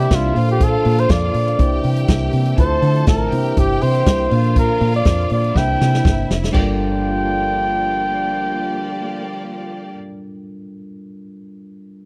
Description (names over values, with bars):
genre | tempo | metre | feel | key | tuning
disco | 121 BPM | 4/4 | straight | G dorian | A4 = 437 Hz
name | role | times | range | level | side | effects
warm flugelhorn | melody | 0.0-10.0 s | F4 to G5 | -23 LUFS | equal | none
clear studio string section | second line | 0.0-9.9 s | Bb3 to A5 | -32 LUFS | equal | none
mellow tine electric piano | accompaniment | 0.0-12.1 s | Bb2 to C5 | -26 LUFS | equal | none
mellow French horn section | sustained chords | 0.0-10.0 s | C3 to E5 | -30 LUFS | equal | none
deep dub fingered electric bass | bass | 0.0-10.0 s | F1 to D3 | -22 LUFS | equal | none
vintage drum kit | drums | 0.1-6.7 s | crash cymbal, hi-hat, kick drum, snare drum | -20 LUFS | equal | none
room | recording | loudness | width
studio reverb | dry, close 1970s-style studio recording | -17 LUFS | mono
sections
0.0-6.5 A section; 6.5-10.5 B section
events
drum fill 5.6-6.5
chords
0.4 Bbmaj7; 1.6 C7; 2.6 Dm9; 3.3 C7; 4.3 Bb; 5.6 C7; 6.5 Gm7